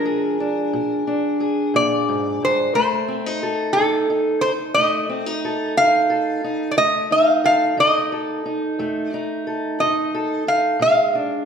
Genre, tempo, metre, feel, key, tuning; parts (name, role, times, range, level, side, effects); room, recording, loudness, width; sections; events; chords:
acoustic country blues, solo or duo; 60 BPM (dotted quarters); 12/8; straight; F mixolydian; A4 = 440 Hz
metal-body resonator slide guitar; melody; 0.0-11.4 s; A4 to F5; -18 LUFS; equal
fingerpicked steel-string acoustic guitar; accompaniment; 0.0-11.5 s; F2 to A4; -22 LUFS; equal
wet scoring stage reverb, RT60 1.4 s; recorded in a church or concert hall; -17 LUFS; side -7 dB against mid
0.0-11.5 A section
0.0 Bb7; 2.7 F7; 10.8 Bb7